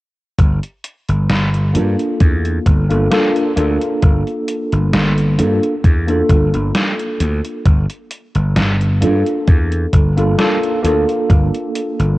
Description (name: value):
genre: vaporwave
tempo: 66 BPM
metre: 4/4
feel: swing 54% on 16ths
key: G dorian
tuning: A4 = 440 Hz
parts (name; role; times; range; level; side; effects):
- gritty slap bass; bass; 0.4-12.2 s; G1 to G2; -15 LUFS; equal; overdrive
- electronic kick drum; drums; 0.4-11.5 s; none; -12 LUFS; equal; none
- gated 80s digital drum machine; drums; 0.4-12.2 s; hi-hat, snare drum; -20 LUFS; equal; gated reverb, gated reverb snare
- tine electric piano; accompaniment; 1.7-12.2 s; Bb3 to A4; -18 LUFS; equal; medium stereo tremolo, lush chorus, analog delay
room: light reverb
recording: worn, warbling old tape, cassette tape, warbly pitch drift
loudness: -13 LUFS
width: side -18 dB against mid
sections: 0.4-7.7 A section; 7.7-12.2 B section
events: break 6.8-7.7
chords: 0.4 Gm7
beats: | 0.39 1.30 2.21 3.12 | 4.02 4.93 5.84 6.75 | 7.66 8.57 9.48 10.39 | 11.30